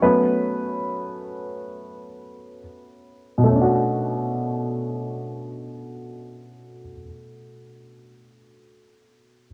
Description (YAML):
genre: hip hop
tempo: free time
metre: none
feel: none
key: B minor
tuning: A4 = 438 Hz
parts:
  - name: dark upright piano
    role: accompaniment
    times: 0.0-9.5 s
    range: B2 to B4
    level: -24 LUFS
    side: equal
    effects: low-pass filter
room: moderate studio reverb, RT60 0.6 s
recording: cassette tape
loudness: -24 LUFS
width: mono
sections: 0.0-3.5 A section; 3.5-7.0 B section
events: upright piano solo 0.0-3.5; filter sweep on upright piano 0.0-3.5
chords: 0.0 F#madd11; 3.5 Bm9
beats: free time